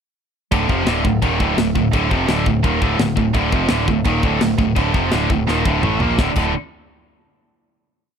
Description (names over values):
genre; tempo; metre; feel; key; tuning
heavy metal; 169 BPM; 4/4; straight; D phrygian; A4 = 440 Hz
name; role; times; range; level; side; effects
scooped high-gain guitar; riff; 0.5-6.5 s; D2 to Bb3; -20 LUFS; left 12 dB; distortion
tight distorted guitar; riff; 0.5-6.5 s; D2 to Bb3; -20 LUFS; right 14 dB; distortion
growling picked electric bass; bass; 0.5-6.5 s; D1 to Bb1; -23 LUFS; equal; overdrive
tight metal drum kit; drums; 0.5-6.5 s; china cymbal, crash cymbal, kick drum, snare drum, toms; -21 LUFS; left 1 dB; none
room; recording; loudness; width
studio ambience; dry, close 1970s-style studio recording; -15 LUFS; side -7 dB against mid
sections
0.5-6.2 riff; 6.2-7.6 final chord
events
drum fill 5.5-6.2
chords
0.5 Dm; 6.2 D5